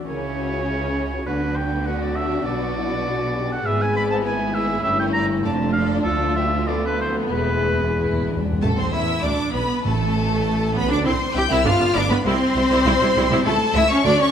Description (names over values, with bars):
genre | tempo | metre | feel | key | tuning
quick classical-period movement for symphony orchestra | 100 BPM | 2/4 | rubato | B minor, A minor from 3.7 s | A4 = 440 Hz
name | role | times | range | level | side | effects
rich studio violin section | melody | 0.0-14.3 s | D4 to G6 | -29 LUFS | left 3 dB | none
rich studio violin section | second line | 0.0-14.3 s | B3 to G5 | -26 LUFS | left 2 dB | none
warm studio cello section | bass | 0.0-14.3 s | D2 to G4 | -25 LUFS | equal | none
clear oboe | second line | 0.1-8.3 s | A4 to B5 | -25 LUFS | right 1 dB | none
warm studio viola section | accompaniment | 0.1-14.1 s | C#3 to F#4 | -26 LUFS | right 1 dB | none
warm French horn section | sustained chords | 0.1-8.3 s | D4 to A#4 | -28 LUFS | left 4 dB | none
bright studio double bass section | bass | 0.1-14.1 s | E1 to E2 | -26 LUFS | right 2 dB | none
timpani | percussion | 7.3-10.7 s | E2 to A2 | -27 LUFS | left 1 dB | none
room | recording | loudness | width
wet scoring stage reverb, RT60 2.2 s | faint mains hum | -18 LUFS | side -8 dB against mid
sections
0.0-8.6 A section; 8.6-14.3 B section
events
timpani fill 7.3-8.6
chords
0.1 C#madd11; 1.3 Bm/D; 2.5 Bm; 3.7 E/G#; 4.8 A7/G; 5.4 Dm/F; 6.1 Dm; 6.7 Bdim/D; 7.3 E; 8.6 Am; 9.2 Bm; 9.8 Asus24; 11.1 C; 11.7 G7; 12.3 C; 13.5 A